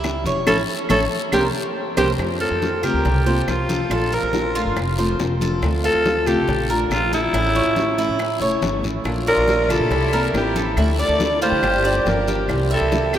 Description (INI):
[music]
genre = latin, Cuban son and guajira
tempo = 140 BPM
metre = 4/4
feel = straight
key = D minor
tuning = A4 = 440 Hz
[part]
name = picked steel-string acoustic guitar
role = accompaniment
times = 0.0-13.2 s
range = C3 to G4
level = -26 LUFS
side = left 2 dB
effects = none
[part]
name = Cuban tres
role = arpeggios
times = 0.0-13.2 s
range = C#4 to F5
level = -24 LUFS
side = right 2 dB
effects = none
[part]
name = upright bass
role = bass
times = 0.0-13.2 s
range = E1 to D3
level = -24 LUFS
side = equal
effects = none
[part]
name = bongos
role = percussion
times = 0.0-13.2 s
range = none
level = -31 LUFS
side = left 4 dB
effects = none
[part]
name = claves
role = percussion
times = 0.0-13.2 s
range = none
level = -37 LUFS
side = right 5 dB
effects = none
[part]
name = congas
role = percussion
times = 0.0-13.2 s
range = none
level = -30 LUFS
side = left 2 dB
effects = none
[part]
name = guiro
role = percussion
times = 0.0-13.2 s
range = none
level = -36 LUFS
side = left 5 dB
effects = none
[part]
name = raspy alto saxophone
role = melody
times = 0.5-13.1 s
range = E4 to D5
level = -22 LUFS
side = equal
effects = none
[part]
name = clear studio violin section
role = second line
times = 9.3-13.2 s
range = E4 to A4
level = -28 LUFS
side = left 2 dB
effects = none
[sound]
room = wet cathedral reverb, RT60 7.2 s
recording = in a vast, echoing space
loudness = -17 LUFS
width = side -10 dB against mid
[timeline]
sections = 0.0-2.2 A section; 2.2-13.2 B section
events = band accent 0.5-2.2; drum fill 1.5-2.2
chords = 0.5 A; 1.3 C5; 2.2 F6; 3.0 C7sus4; 3.9 Bbmaj7; 4.8 F; 5.6 Dm7; 6.5 Bbmaj7; 7.3 A; 9.1 Bb; 9.9 C7; 10.8 Dsus2; 11.6 Gm7; 12.5 C7